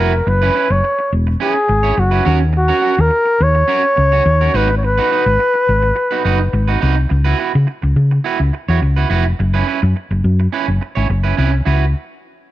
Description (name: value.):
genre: disco.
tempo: 105 BPM.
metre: 4/4.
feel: straight.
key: C# dorian.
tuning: A4 = 440 Hz.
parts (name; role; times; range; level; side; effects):
breathy flugelhorn; melody; 0.0-6.8 s; F#4 to C#5; -15 LUFS; left 1 dB; none.
electric guitar at the edge of break-up; accompaniment; 0.0-11.8 s; C#4 to C#5; -21 LUFS; right 8 dB; spring reverb.
hollow-body short-scale fingered electric bass; bass; 0.0-11.9 s; E1 to C#3; -14 LUFS; equal; none.
room: studio reverb.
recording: dry, close 1970s-style studio recording.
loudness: -13 LUFS.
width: side -14 dB against mid.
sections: 0.0-7.1 A section; 7.1-11.7 B section.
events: none.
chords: 0.3 F#7sus4; 2.3 D#m7; 4.5 G#m7; 7.1 C#m7; 9.4 F#7sus4; 11.7 C#m7.